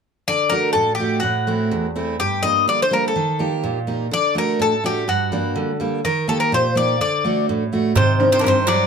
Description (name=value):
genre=greek folk, Greek bouzouki band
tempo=125 BPM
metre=2/4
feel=straight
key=D phrygian dominant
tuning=A4 = 441 Hz
part: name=Greek bouzouki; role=melody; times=0.3-8.9 s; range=F#4 to Eb5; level=-18 LUFS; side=left 2 dB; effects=none
part: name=picked steel-string acoustic guitar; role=accompaniment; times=0.3-8.9 s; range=E2 to G4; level=-21 LUFS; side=right 2 dB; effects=none
part: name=Greek bouzouki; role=second line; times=8.0-8.9 s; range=D3 to F#3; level=-24 LUFS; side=right 6 dB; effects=none
part: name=darbuka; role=percussion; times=8.0-8.8 s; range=none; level=-20 LUFS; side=right 3 dB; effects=none
room=light reverb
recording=close, detailed microphones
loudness=-17 LUFS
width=side -6 dB against mid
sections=0.3-8.0 A section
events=none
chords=0.3 D; 1.2 Am; 2.2 Gm; 3.2 Eb; 4.1 D; 5.1 Gm; 6.0 Eb; 7.0 D; 8.0 Cmadd9